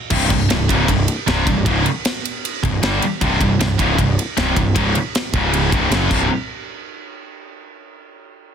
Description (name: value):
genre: heavy metal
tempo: 155 BPM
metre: 4/4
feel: straight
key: unclear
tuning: A4 = 438 Hz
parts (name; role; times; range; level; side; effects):
- scooped high-gain guitar; riff; 0.1-6.3 s; C2 to G3; -21 LUFS; left 11 dB; distortion
- scooped high-gain guitar; riff; 0.1-6.3 s; C2 to G3; -20 LUFS; right 8 dB; distortion
- fuzz picked electric bass; bass; 0.1-6.3 s; C1 to G1; -21 LUFS; equal; overdrive
- tight metal drum kit; drums; 0.1-6.2 s; crash cymbal, kick drum, ride cymbal, snare drum; -22 LUFS; equal; soft clipping on kick
room: little or no reverb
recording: dense, heavily limited modern master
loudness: -15 LUFS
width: side -7 dB against mid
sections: 0.1-6.3 A section; 6.3-7.8 B section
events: drum fill 6.1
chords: 0.1 C5; 5.3 Db5; 5.7 C5; 6.3 N.C.